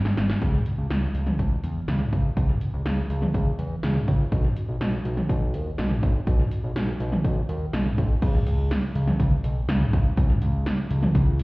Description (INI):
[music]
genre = synth-pop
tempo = 123 BPM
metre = 4/4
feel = straight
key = C# minor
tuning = A4 = 438 Hz
[part]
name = fat analog bass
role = bass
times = 0.0-11.4 s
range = G#1 to E2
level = -24 LUFS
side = equal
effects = none
[part]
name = 80s electronic pad drums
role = drums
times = 0.1-11.4 s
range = crash cymbal, hi-hat, kick drum, snare drum, toms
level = -24 LUFS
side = equal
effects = gated reverb on snare and toms
[sound]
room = light reverb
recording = heard muffled through a wall, stone room reverb, EQ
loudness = -22 LUFS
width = side -23 dB against mid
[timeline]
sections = 0.4-8.2 A section; 8.2-11.4 B section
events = drum fill 0.0-0.4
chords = none